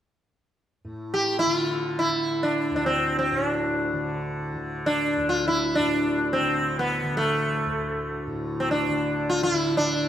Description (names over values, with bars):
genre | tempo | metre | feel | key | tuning
indian classical | free time | none | none | D raga bhimpalasi | A4 = 440 Hz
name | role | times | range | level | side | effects
tanpura | drone | 0.8-10.1 s | D2 to D3 | -30 LUFS | equal | none
sitar | melody | 1.1-10.1 s | A3 to G4 | -23 LUFS | equal | none
room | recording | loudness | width
wet recital hall reverb, RT60 1.7 s | dark, warm production | -22 LUFS | side -10 dB against mid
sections
0.8-10.1 A section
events
none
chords
none